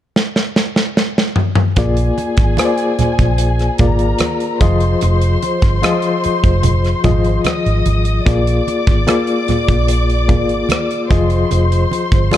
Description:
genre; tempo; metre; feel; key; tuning
lush 1970s-style soul; 74 BPM; 4/4; straight; unclear; A4 = 441 Hz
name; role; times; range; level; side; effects
modern studio drum kit; drums; 0.2-12.4 s; hi-hat, kick drum, rim click, snare drum, toms; -16 LUFS; equal; none
dark studio string section; second line; 1.8-12.4 s; Ab4 to Eb6; -22 LUFS; left 1 dB; none
barky reed electric piano; accompaniment; 1.8-12.4 s; F3 to Eb5; -18 LUFS; left 4 dB; overdrive, fast tremolo
vintage muted fingered electric bass; bass; 1.8-12.3 s; F1 to Bb1; -16 LUFS; right 1 dB; none
congas; percussion; 1.8-12.4 s; none; -22 LUFS; right 4 dB; none
room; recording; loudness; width
small room ambience; dark, warm production; -13 LUFS; side -12 dB against mid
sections
0.0-1.8 A section; 1.8-12.4 B section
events
drum fill 0.1-1.8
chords
0.0 N.C.; 1.8 Bb7; 4.6 Fm7; 8.3 Bb7; 11.1 Fm7

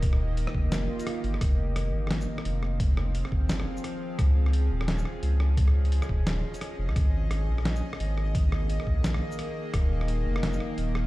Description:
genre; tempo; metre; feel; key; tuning
half-time drum and bass; 173 BPM; 4/4; swing 59% on 16ths, half-time; F minor; A4 = 440 Hz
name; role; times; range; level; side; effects
bowed-like drone; sustained chords; 0.0-11.1 s; Eb3 to F5; -34 LUFS; equal; built-in reverb, sidechain pumping
saturated sub bass; bass; 0.0-11.1 s; Eb1 to Db2; -26 LUFS; equal; tube saturation
boom bap sampler-style drum kit; drums; 0.0-11.0 s; hi-hat, rim click, shaker, snare drum; -33 LUFS; equal; studio reverb
electronic kick drum; drums; 0.0-9.8 s; none; -24 LUFS; equal; studio reverb
swell; sound effects; 0.8-1.4 s; none; -39 LUFS; right 5 dB; none
room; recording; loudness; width
digital ambience; played on a big sound system in a bare room, large studio reverb; -25 LUFS; side -18 dB against mid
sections
0.0-11.1 A section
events
swell 0.8-1.4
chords
0.0 Eb; 1.4 Fm; 4.2 Dbadd9; 7.0 Absus2; 9.7 Eb

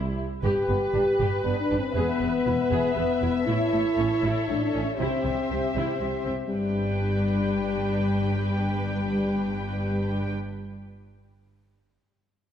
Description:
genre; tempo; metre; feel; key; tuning
cinematic; 118 BPM; 3/4; straight; G major; A4 = 445 Hz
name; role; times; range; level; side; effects
rich symphonic violin section; second line; 0.0-10.3 s; E4 to G5; -33 LUFS; left 4 dB; none
rich symphonic viola section; accompaniment; 0.0-10.3 s; G3 to B4; -32 LUFS; right 1 dB; none
mellow French horn section; sustained chords; 0.0-10.3 s; G3 to G4; -26 LUFS; left 2 dB; none
warm symphonic double bass section; bass; 0.0-10.3 s; E1 to C2; -31 LUFS; right 2 dB; none
rich symphonic cello section; bass; 0.4-10.3 s; E2 to C3; -32 LUFS; right 2 dB; none
room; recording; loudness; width
wet scoring stage reverb, RT60 2.1 s; none; -23 LUFS; side -9 dB against mid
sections
0.4-6.5 A section; 6.5-9.5 B section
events
none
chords
0.4 G; 2.0 E; 3.5 A; 5.0 C; 6.5 G

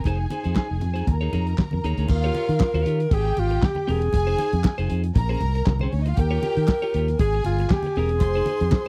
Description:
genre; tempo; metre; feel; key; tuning
disco; 118 BPM; 4/4; straight; unclear; A4 = 441 Hz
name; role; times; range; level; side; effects
rich studio string section; second line; 0.0-8.9 s; C4 to C6; -34 LUFS; equal; none
congas; percussion; 0.0-8.8 s; none; -34 LUFS; equal; none
clean electric guitar; accompaniment; 0.1-8.8 s; C4 to Db5; -34 LUFS; equal; none
fingered electric bass; bass; 0.1-8.7 s; E1 to Eb3; -26 LUFS; equal; none
warm soul drum kit; drums; 0.1-8.9 s; crash cymbal, handclaps, hi-hat, kick drum, snare drum; -23 LUFS; equal; none
breathy alto saxophone; melody; 2.1-8.9 s; F4 to Bb4; -27 LUFS; equal; none
room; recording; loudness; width
little or no reverb; dry, close 1970s-style studio recording; -23 LUFS; mono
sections
0.0-2.1 A section; 2.1-8.9 B section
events
none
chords
0.1 Fm7; 1.1 Eb7sus4; 2.1 Eb9; 3.1 Abmaj9; 4.1 Fm7; 5.2 Bbm9; 6.2 Eb9; 7.2 Abmaj9; 8.2 Fm7

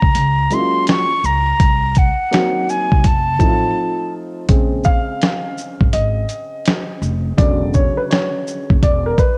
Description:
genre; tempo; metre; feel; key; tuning
hip hop, jazz-hop; 83 BPM; 4/4; swing 64% on 16ths; Bb minor; A4 = 441 Hz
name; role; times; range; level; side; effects
breathy concert flute; melody; 0.0-4.1 s; Gb5 to Db6; -20 LUFS; equal; cassette tape
upright bass; bass; 0.0-9.1 s; E1 to Db2; -23 LUFS; equal; none
dusty soul sampler-style drum kit; drums; 0.0-9.4 s; hi-hat, kick drum, shaker, snare drum; -18 LUFS; equal; none
dark grand piano; accompaniment; 0.5-9.4 s; Db3 to F5; -23 LUFS; equal; cassette tape
room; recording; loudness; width
light reverb, small room ambience; home recording on cassette; -17 LUFS; mono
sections
0.0-4.5 A section; 4.5-9.4 B section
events
break 3.8-4.5; grand piano solo 4.5-9.4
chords
0.0 Ebm11 (rootless); 1.6 Cm7b5; 3.0 F7; 4.5 Bbm7; 7.4 E13

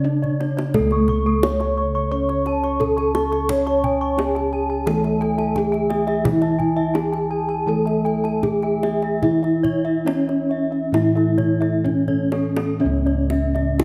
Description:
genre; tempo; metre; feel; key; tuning
Javanese gamelan; 61-87 BPM; 4/4; straight; C# pelog; A4 = 440 Hz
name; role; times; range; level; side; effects
gamelan-type bronze metallophone; melody; 0.0-13.8 s; A3-20c to C#5; -24 LUFS; equal; none
gamelan-type bronze metallophone; accompaniment; 0.0-13.8 s; C#3 to C#4; -28 LUFS; equal; none
gamelan-type bossed gongs; arpeggios; 0.0-13.8 s; A4-20c to C#6; -32 LUFS; equal; none
gamelan-type bronze metallophone; arpeggios; 0.0-13.8 s; A4-20c to C#6; -32 LUFS; equal; none
gamelan-type bossed gongs; bass; 0.0-13.8 s; C#2 to C#5; -27 LUFS; equal; none
kendang; percussion; 0.2-13.8 s; none; -29 LUFS; equal; none
room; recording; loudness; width
moderate recital hall reverb, RT60 1.4 s; none; -20 LUFS; mono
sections
0.7-12.8 A section; 12.8-13.8 B section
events
drum fill 0.2-0.7, 11.8-12.8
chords
none

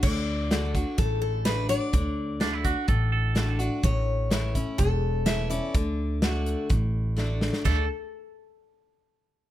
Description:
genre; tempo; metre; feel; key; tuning
honky-tonk and classic country; 126 BPM; 4/4; straight; D major; A4 = 438 Hz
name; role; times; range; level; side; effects
picked steel-string acoustic guitar; melody; 0.0-7.9 s; A4 to E5; -31 LUFS; left 3 dB; none
picked steel-string acoustic guitar; accompaniment; 0.0-7.8 s; E2 to F#4; -32 LUFS; left 2 dB; none
upright bass; bass; 0.0-7.9 s; E1 to D2; -27 LUFS; equal; none
natural country drum kit; drums; 0.0-7.8 s; crash cymbal, hi-hat, kick drum, snare drum, toms; -27 LUFS; equal; none
twangy electric guitar; second line; 2.4-3.6, 7.7-7.9 s; D4 to A4; -31 LUFS; right 8 dB; tape echo
room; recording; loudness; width
little or no reverb; close, detailed microphones; -24 LUFS; side -13 dB against mid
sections
0.0-7.7 A section; 7.7-9.5 B section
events
drum fill 7.2-7.7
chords
0.0 D; 3.8 A; 5.7 D

